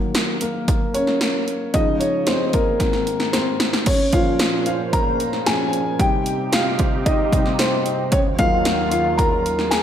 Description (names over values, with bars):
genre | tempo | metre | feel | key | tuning
piano-driven pop | 113 BPM | 4/4 | straight | Bb minor | A4 = 440 Hz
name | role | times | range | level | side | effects
warm upright piano | accompaniment | 0.0-9.8 s | Ab2 to Bb5 | -20 LUFS | left 1 dB | slapback echo
punchy analog drum machine | drums | 0.1-9.8 s | crash cymbal, hi-hat, kick drum, snare drum | -21 LUFS | equal | overdrive
lush unison pad | sustained chords | 3.9-9.8 s | Eb2 to C5 | -27 LUFS | right 3 dB | chorus, phaser
room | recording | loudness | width
moderate lush hall reverb, RT60 1.7 s | big arena sound | -17 LUFS | side -9 dB against mid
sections
0.0-3.9 A section; 3.9-9.8 B section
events
upright piano solo 0.0-3.9, 3.9-9.8; drum fill 2.8-3.9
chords
0.0 Ebm; 1.7 Db; 2.8 Abadd9; 3.9 Bbmadd9; 6.0 Cm; 8.1 Ebmadd9